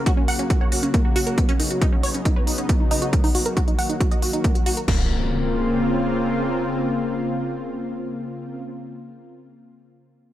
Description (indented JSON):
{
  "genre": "uplifting trance",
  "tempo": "137 BPM",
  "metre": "4/4",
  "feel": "straight",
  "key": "Bb minor",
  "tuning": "A4 = 439 Hz",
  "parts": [
    { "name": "lush unison pad", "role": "sustained chords", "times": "0.0-8.6 s", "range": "Db3 to F4", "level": "-25 LUFS", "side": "left 1 dB", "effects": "chorus, sidechain pumping" },
    { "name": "wide unison pluck", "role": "arpeggios", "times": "0.0-5.1 s", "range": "Bb3 to Gb5", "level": "-26 LUFS", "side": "right 2 dB", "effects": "sidechain pumping, tape echo" },
    { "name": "electronic kick drum", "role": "drums", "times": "0.1-5.0 s", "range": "none", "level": "-20 LUFS", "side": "equal", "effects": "overdrive, studio reverb" },
    { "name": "techno drum kit", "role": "drums", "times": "0.1-5.0 s", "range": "crash cymbal, hi-hat", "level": "-29 LUFS", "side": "equal", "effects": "overdrive, studio reverb" },
    { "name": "impact", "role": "sound effects", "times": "4.9-8.6 s", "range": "none", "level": "-28 LUFS", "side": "equal", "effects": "none" }
  ],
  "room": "light reverb",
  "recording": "none",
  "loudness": "-19 LUFS",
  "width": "side -13 dB against mid",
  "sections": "0.0-4.9 A section; 4.9-8.4 B section",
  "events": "filter sweep on synth pluck 0.0-4.9",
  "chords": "0.0 Gb; 1.4 Badd9; 3.1 Ebm; 4.9 Bbmadd9",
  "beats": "0.06 0.50 0.94 | 1.38 1.81 2.25 2.69 | 3.13 3.57 4.00 4.44 | 4.88 5.32 5.76 6.19 | 6.63 7.07 7.51 7.95"
}